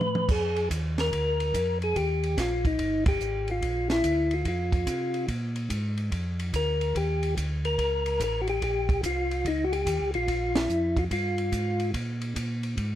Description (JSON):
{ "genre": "soul jazz organ trio", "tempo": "144 BPM", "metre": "4/4", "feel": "swing 65% on 8ths", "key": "Bb mixolydian", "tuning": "A4 = 445 Hz", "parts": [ { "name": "percussive tonewheel organ", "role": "melody", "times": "0.0-11.9 s", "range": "Eb4 to Cb5", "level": "-27 LUFS", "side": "left 1 dB", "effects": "slow rotary speaker" }, { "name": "mellow tonewheel organ", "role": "bass", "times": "0.0-13.0 s", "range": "G1 to C3", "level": "-30 LUFS", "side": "equal", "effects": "overdrive, chorus vibrato, slow rotary speaker" }, { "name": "compact cocktail drum kit", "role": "drums", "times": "0.0-12.9 s", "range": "crash cymbal, hi-hat, kick drum, ride cymbal, snare drum, toms", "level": "-32 LUFS", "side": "right 1 dB", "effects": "none" } ], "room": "light reverb", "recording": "none", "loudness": "-25 LUFS", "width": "side -12 dB against mid", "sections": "0.3-13.0 A section", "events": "drum fill 0.0; band accent 3.0, 10.5", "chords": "0.3 Bb7; 2.0 Eb; 3.6 Bb7; 7.0 Eb7; 10.3 Bb5" }